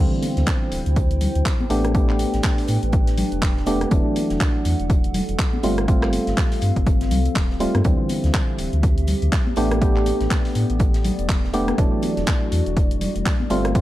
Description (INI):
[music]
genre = deep house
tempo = 122 BPM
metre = 4/4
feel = swing 59% on 16ths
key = unclear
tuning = A4 = 440 Hz
[part]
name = warbly tape-like pad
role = sustained chords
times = 0.0-13.8 s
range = A3 to G5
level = -30 LUFS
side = left 1 dB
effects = chorus, built-in reverb, vintage 12-bit sampler grit, sidechain pumping
[part]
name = percussive organ stab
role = stabs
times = 0.0-13.8 s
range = D3 to G4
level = -24 LUFS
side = equal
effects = chorus, vintage 12-bit sampler grit, sidechain pumping, tape echo
[part]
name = sub bass with octave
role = bass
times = 0.0-13.8 s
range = D1 to A2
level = -23 LUFS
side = equal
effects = sidechain pumping
[part]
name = big rock drum kit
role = drums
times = 0.2-13.8 s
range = hi-hat, snare drum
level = -41 LUFS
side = right 2 dB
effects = none
[part]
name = deep house drum kit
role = drums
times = 0.2-13.8 s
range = handclaps, hi-hat, rim click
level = -30 LUFS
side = equal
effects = overdrive
[part]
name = congas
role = percussion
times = 0.2-13.5 s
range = none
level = -30 LUFS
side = left 2 dB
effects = none
[part]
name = electronic kick drum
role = drums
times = 0.5-13.8 s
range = none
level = -20 LUFS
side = equal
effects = none
[sound]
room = little or no reverb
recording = none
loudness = -18 LUFS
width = side -15 dB against mid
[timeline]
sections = 0.0-13.8 A section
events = filter sweep on synth stab 0.0-13.8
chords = 0.0 D9sus4; 1.7 A9sus4; 3.9 E9sus4; 5.6 G9sus4; 7.8 D9sus4; 9.6 A9sus4; 11.8 E9sus4